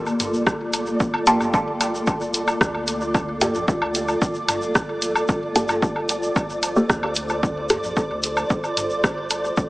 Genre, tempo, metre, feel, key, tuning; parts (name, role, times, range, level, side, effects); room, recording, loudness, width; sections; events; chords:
dub techno; 112 BPM; 4/4; straight; G minor; A4 = 440 Hz
granular cloud pad; sustained chords; 0.0-9.7 s; Bb3 to C5; -26 LUFS; equal; built-in reverb, sidechain pumping
warm sub bass; bass; 0.0-9.7 s; G1 to D2; -39 LUFS; equal; sidechain pumping
flickering grainy texture; texture; 0.0-9.7 s; D5; -29 LUFS; equal; built-in reverb, sidechain pumping
electronic woodblock and toms; percussion; 0.1-9.4 s; -27 LUFS; left 1 dB; sidechain pumping on perc, sidechain pumping on toms, dub echo
tube shaker; percussion; 0.1-9.7 s; -34 LUFS; right 1 dB
punchy analog drum machine; drums; 0.2-9.4 s; hi-hat, rim click; -23 LUFS; equal
electronic kick drum; drums; 0.5-9.7 s; -23 LUFS; equal
filtered dub chord stab; stabs; 1.3-8.0 s; Bb3 to A4; -24 LUFS; equal; chorus, phaser, sidechain pumping, dub echo
moderate huge ambient reverb, RT60 4.2 s; small speaker sound; -19 LUFS; side -19 dB against mid
0.0-9.7 A section
filter sweep on synth stab 0.0-9.7
0.0 Gm9